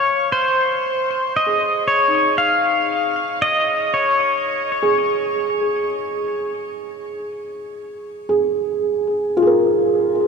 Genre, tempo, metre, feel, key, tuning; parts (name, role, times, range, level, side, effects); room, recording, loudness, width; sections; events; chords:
ambient; 58 BPM; 4/4; straight; Db major; A4 = 440 Hz
pedal steel guitar; melody; 0.0-5.5 s; C5 to F5; -17 LUFS; left 1 dB; shimmer reverb, ping-pong delay
felt-muted upright piano; arpeggios; 0.0-10.3 s; Eb4 to C5; -20 LUFS; right 2 dB; shimmer reverb, ping-pong delay
wet cathedral reverb, RT60 6.1 s; -16 LUFS; side -5 dB against mid
0.0-10.3 A section
fade-in on felt piano 0.0-10.3
0.0 Dbmaj7(no3)